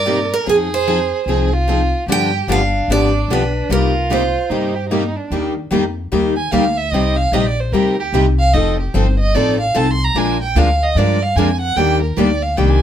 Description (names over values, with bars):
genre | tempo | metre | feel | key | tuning
acoustic string swing (jazz manouche) | 149 BPM | 4/4 | swing 62% on 8ths | C minor, Eb major from 5.3 s | A4 = 440 Hz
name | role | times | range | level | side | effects
picked steel-string acoustic guitar | melody | 0.0-4.9 s | Ab4 to G5 | -19 LUFS | right 4 dB | none
warm violin | second line | 0.0-12.8 s | D4 to C6 | -20 LUFS | right 3 dB | none
upright bass | bass | 0.0-12.8 s | F1 to G2 | -19 LUFS | equal | none
picked steel-string acoustic guitar | accompaniment | 0.1-12.8 s | C3 to Bb4 | -19 LUFS | left 5 dB | none
picked steel-string acoustic guitar | accompaniment | 0.1-12.8 s | C3 to Bb4 | -24 LUFS | right 6 dB | none
room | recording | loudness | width
moderate studio reverb, RT60 0.6 s | minimal, uncompressed stereo recording | -14 LUFS | side -10 dB against mid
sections
0.0-5.3 A section; 5.3-12.8 B section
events
violin solo 5.3-12.8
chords
0.5 Fm7; 2.1 G7; 3.7 Cm7; 5.3 Eb; 6.9 Cm; 8.5 F7; 10.2 Bb7; 11.8 Ebmaj7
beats
0.06 | 0.46 0.87 1.27 1.68 | 2.08 2.49 2.89 3.29 | 3.70 4.10 4.51 4.91 | 5.31 5.72 6.12 6.52 | 6.93 7.33 7.73 8.14 | 8.54 8.94 9.35 9.75 | 10.15 10.56 10.96 11.36 | 11.77 12.17 12.57